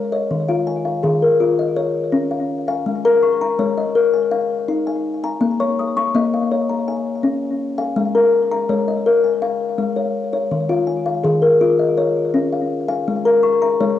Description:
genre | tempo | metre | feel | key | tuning
world meditative, meditative tuned percussion | 165 BPM (eighths) | 7/8 | straight | Db major pentatonic | A4 = 440 Hz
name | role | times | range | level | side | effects
kalimba | solo | 0.0-14.0 s | Eb3 to Eb6 | -16 LUFS | left 3 dB | cassette tape, tape echo
room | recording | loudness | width
wet small room reverb, RT60 0.6 s | home recording on cassette | -16 LUFS | side -11 dB against mid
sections
0.0-14.0 A section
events
none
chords
0.0 Ab5; 2.1 Db; 4.7 Eb5; 7.2 Db; 9.8 Ab5; 12.3 Db

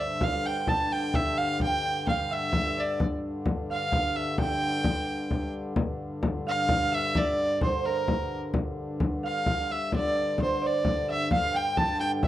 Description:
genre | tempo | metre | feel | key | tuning
medieval dance | 87 BPM (dotted quarters) | 6/8 | straight | G dorian | A4 = 442 Hz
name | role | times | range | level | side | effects
warm fiddle | melody | 0.0-12.3 s | Bb4 to A5 | -28 LUFS | equal | slapback echo
concert harp | second line | 0.0-12.3 s | Bb4 to A5 | -33 LUFS | right 5 dB | none
hand-pumped harmonium | drone | 0.0-12.3 s | G2 to D3 | -33 LUFS | left 1 dB | none
frame drum | percussion | 0.2-12.3 s | none | -29 LUFS | left 1 dB | none
alto recorder | second line | 11.3-12.3 s | E5 to G5 | -34 LUFS | left 3 dB | none
room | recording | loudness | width
light reverb | dry, close 1970s-style studio recording | -25 LUFS | side -13 dB against mid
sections
0.0-5.8 A section; 5.8-12.3 A section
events
none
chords
none

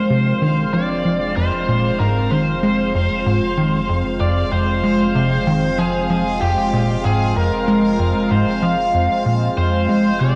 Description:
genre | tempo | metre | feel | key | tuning
ambient, sequencer-driven space music | 95 BPM | 4/4 | straight | F dorian | A4 = 441 Hz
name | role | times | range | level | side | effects
biting lead guitar | melody | 0.0-10.4 s | G4 to F5 | -25 LUFS | equal | overdrive, cassette tape, shimmer reverb, analog delay
sweeping resonant pad | sustained chords | 0.0-10.4 s | F3 to C5 | -24 LUFS | equal | chorus, cassette tape, shimmer reverb
tight sequencer bass | riff | 0.0-10.4 s | F2 to Ab3 | -20 LUFS | equal | cassette tape, analog delay
warm sub bass | bass | 0.0-10.4 s | F1 | -34 LUFS | equal | none
bubbling stepped-filter texture | texture | 0.0-10.4 s | F5 | -35 LUFS | equal | chorus, built-in reverb, cassette tape, shimmer reverb
room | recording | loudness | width
wet spring reverb, RT60 2.6 s | home recording on cassette | -18 LUFS | mono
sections
0.0-10.4 A section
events
none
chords
0.0 Fm

